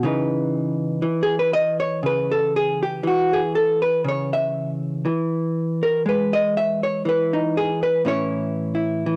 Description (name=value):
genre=solo jazz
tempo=60 BPM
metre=4/4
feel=swing 68% on 8ths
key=C# minor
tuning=A4 = 439 Hz
part: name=vintage hollow-body jazz guitar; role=solo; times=0.0-9.2 s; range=A2 to E5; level=-22 LUFS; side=equal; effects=cassette tape
room=light reverb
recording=home recording on cassette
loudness=-22 LUFS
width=mono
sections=0.0-9.2 A section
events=hollow-body jazz guitar solo 0.0-9.2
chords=0.0 C#m9; 8.0 A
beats=| 0.03 1.03 2.03 3.03 | 4.04 5.04 6.04 7.04 | 8.05 9.05